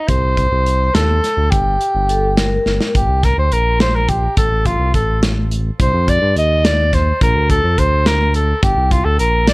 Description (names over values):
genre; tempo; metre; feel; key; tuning
progressive instrumental, band music in an uneven meter; 211 BPM (eighths); 5/8; straight; G minor; A4 = 439 Hz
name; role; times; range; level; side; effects
dark soprano saxophone; melody; 0.0-9.5 s; Eb4 to Eb5; -17 LUFS; equal; none
smooth synth bass; bass; 0.1-9.5 s; G1 to G2; -16 LUFS; equal; none
modern studio drum kit; drums; 0.1-9.5 s; hi-hat, kick drum, snare drum; -18 LUFS; equal; none
vibraphone with medium hard mallets; second line; 2.1-2.9 s; A4 to Bb4; -20 LUFS; left 2 dB; none
room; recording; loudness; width
light reverb; worn, warbling old tape, cassette tape, warbly pitch drift; -13 LUFS; side -25 dB against mid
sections
0.0-2.9 A section; 2.9-9.5 B section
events
drum fill 2.7; soprano saxophone solo 2.9-9.5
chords
0.1 Cm; 1.5 Gm; 4.4 N.C.; 5.8 Cm; 7.2 Bb; 8.6 Gm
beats
| 0.09 0.38 0.66 0.95 1.23 | 1.52 1.81 2.09 2.38 2.66 | 2.95 3.23 3.52 3.80 4.09 | 4.37 4.66 4.94 5.23 5.51 | 5.80 6.08 6.37 6.65 6.93 | 7.22 7.50 7.78 8.07 8.35 | 8.63 8.92 9.20 9.48